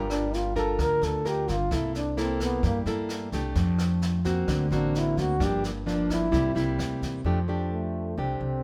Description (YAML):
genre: bossa nova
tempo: 130 BPM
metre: 4/4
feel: straight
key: F major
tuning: A4 = 440 Hz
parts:
  - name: nylon-string guitar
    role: accompaniment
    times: 0.0-8.6 s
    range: G2 to Bb4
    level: -31 LUFS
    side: equal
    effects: none
  - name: upright bass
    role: bass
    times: 0.0-8.6 s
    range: G1 to G2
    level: -32 LUFS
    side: equal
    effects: none
  - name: breathy trombone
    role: melody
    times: 0.1-8.6 s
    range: A3 to Bb4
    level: -31 LUFS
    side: equal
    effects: none
  - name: jazz brush drum kit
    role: drums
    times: 0.1-7.1 s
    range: kick drum, rim click, snare drum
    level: -36 LUFS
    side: equal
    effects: none
room: moderate studio reverb, RT60 0.9 s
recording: band playing live in one room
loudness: -27 LUFS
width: mono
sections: 0.0-7.3 A section; 7.3-8.6 B section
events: trombone solo 0.0-7.3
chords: 0.0 Gm7; 1.7 C13; 3.6 F69; 4.5 D7b13; 5.4 Gm7; 6.3 C7; 7.3 F69